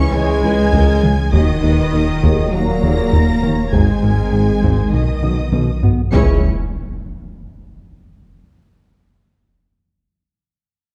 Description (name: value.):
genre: cinematic, hybrid orchestral and electronic film score.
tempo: 100 BPM.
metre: 4/4.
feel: straight.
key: C# dorian.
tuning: A4 = 438 Hz.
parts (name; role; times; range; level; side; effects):
rich symphonic violin section; melody; 0.0-6.5 s; D#6 to C#7; -33 LUFS; equal; none.
rich symphonic violin section; second line; 0.0-6.5 s; C#5 to C#6; -31 LUFS; equal; none.
rich symphonic viola section; accompaniment; 0.0-6.5 s; G#3 to D#5; -30 LUFS; equal; none.
dark trombone section; sustained chords; 0.0-6.4 s; A#2 to C#4; -28 LUFS; equal; none.
mellow French horn section; sustained chords; 0.0-6.4 s; D#3 to C#4; -25 LUFS; equal; none.
rich symphonic cello section; bass; 0.0-6.5 s; D#3 to C#4; -24 LUFS; equal; none.
warm sub bass; bass; 0.0-6.5 s; D#1 to C#2; -24 LUFS; equal; none.
soft round pluck; arpeggios; 0.1-6.0 s; C#3 to G#4; -28 LUFS; equal; none.
round analog bass; riff; 0.1-6.0 s; C#2 to B3; -23 LUFS; equal; none.
mellow tuba; bass; 0.1-6.4 s; G#1 to D#2; -27 LUFS; equal; none.
rich symphonic double bass section; bass; 0.1-6.5 s; G#1 to D#2; -26 LUFS; equal; none.
taiko ensemble; drums; 0.4-6.1 s; none; -22 LUFS; equal; none.
impact; sound effects; 6.1-8.5 s; none; -23 LUFS; equal; none.
room: moderate scoring stage reverb, RT60 1.4 s.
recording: dark, warm production.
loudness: -15 LUFS.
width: mono.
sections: 0.0-6.1 A section; 6.1-8.5 B section.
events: drum fill 5.2-6.1; impact 6.1-8.5.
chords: 0.0 C#m; 1.3 D#m; 3.7 G#; 4.9 B; 6.1 C#m.